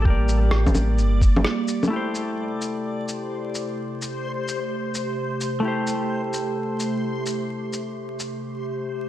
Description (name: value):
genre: future garage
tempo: 129 BPM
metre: 4/4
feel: swing 64% on 16ths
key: A phrygian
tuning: A4 = 441 Hz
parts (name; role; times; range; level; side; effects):
- semi-hollow electric guitar; accompaniment; 0.0-8.4 s; A3 to D5; -28 LUFS; left 2 dB; sidechain pumping, analog delay
- warbly tape-like pad; sustained chords; 0.0-9.1 s; C3 to G4; -28 LUFS; right 2 dB; chorus, built-in reverb, phaser, vintage 12-bit sampler grit, sidechain pumping
- warm sub bass; bass; 0.0-1.4 s; G1 to A1; -20 LUFS; equal; sidechain pumping
- backwards swelling texture; texture; 0.0-8.4 s; C5 to D5; -35 LUFS; left 2 dB; built-in reverb
- electronic kick drum; drums; 0.1-1.3 s; none; -18 LUFS; equal; studio reverb
- electronic shaker, rim click and bongos; drums; 0.3-8.3 s; none; -26 LUFS; left 1 dB; studio reverb
room: moderate lush hall reverb, RT60 1.9 s, digital ambience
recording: dry, gritty hardware recording, vinyl crackle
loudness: -22 LUFS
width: side -12 dB against mid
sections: 0.0-1.9 A section; 1.9-9.1 B section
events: break 1.5-1.9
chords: 0.0 Gmadd9; 1.9 Am7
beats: | 0.06 0.52 0.99 1.45 | 1.92 2.38 2.85 3.31 | 3.78 4.24 4.71 5.17 | 5.64 6.10 6.57 7.03 | 7.50 7.96 8.43 8.89